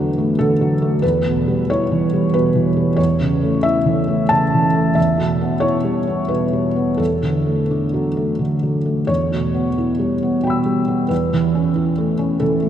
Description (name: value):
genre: neoclassical minimalist piano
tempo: 90 BPM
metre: 3/4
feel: rubato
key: E dorian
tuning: A4 = 440 Hz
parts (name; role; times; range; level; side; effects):
- felt-muted upright piano; solo; 0.0-12.7 s; E2 to E6; -16 LUFS; equal; none
room: wet cathedral reverb, RT60 6.1 s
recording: recorded in a church or concert hall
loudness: -16 LUFS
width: side -10 dB against mid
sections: 0.0-9.1 A section; 9.1-12.7 A section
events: none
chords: 0.0 D/E; 1.0 Em; 3.0 A/E; 5.0 Em; 7.0 D/E; 9.1 Em; 11.1 A/E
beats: 0.38 | 1.03 1.68 2.33 | 2.98 3.64 4.32 | 4.97 5.64 6.31 | 7.00 7.70 8.40 | 9.09 9.77 10.44 | 11.11 11.77 12.43